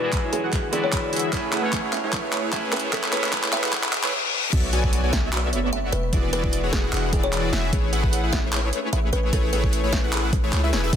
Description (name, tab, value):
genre	future bass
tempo	150 BPM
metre	4/4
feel	swing 55% on 16ths, half-time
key	A major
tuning	A4 = 440 Hz
part	kalimba	melody	0.0-10.2 s	G#4 to E5	-30 LUFS	equal	sidechain pumping, low-pass filter, ping-pong delay
part	clean electric guitar	accompaniment	0.0-3.9 s	G#3 to C#5	-31 LUFS	equal	sidechain pumping, ping-pong delay
part	ethereal airy pad	sustained chords	0.0-11.0 s	E2 to B4	-36 LUFS	left 1 dB	ensemble chorus, built-in reverb, sidechain pumping
part	big bright polysynth	riff	0.0-11.0 s	E3 to G#5	-27 LUFS	equal	chorus, sidechain pumping, ping-pong delay
part	riser, reverse cymbal and impact	sound effects	1.9-6.1 s	none	-32 LUFS	left 3 dB	none
part	electronic kick drum	drums	0.1-11.0 s	none	-24 LUFS	equal	overdrive
part	pop drum kit	drums	0.1-11.0 s	crash cymbal, handclaps, hi-hat, snare drum	-27 LUFS	equal	overdrive, high-pass filter on hats, high-pass filter on snare, high-pass filter on toms, high-pass filter on cymbals, high-pass filter on room
part	airy dreamy lead	arpeggios	4.5-11.0 s	C#5 to G#5	-36 LUFS	left 1 dB	chorus, sidechain pumping, ping-pong delay
part	thumb-piano-like synth pluck	arpeggios	4.5-11.0 s	F#4 to B5	-38 LUFS	equal	none
part	warm 808-style bass	bass	4.5-11.0 s	E1 to C#2	-25 LUFS	equal	sidechain pumping
room	light reverb, digital ambience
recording	dense, heavily limited modern master, high-pass filter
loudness	-20 LUFS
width	side -8 dB against mid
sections	0.0-4.5 A section; 4.5-11.0 B section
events	build-up 0.0-4.5; drum fill 0.0-4.1; filter sweep on analog polysynth 0.0-4.5; filter sweep on kalimba 0.0-4.5; filter sweep 0.0-4.5; reverse cymbal 3.7-4.5; drop 4.5-11.0; impact 4.5-6.1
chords	0.0 E7; 1.3 Amaj9; 4.5 Bm11; 5.9 E7; 7.7 Amaj9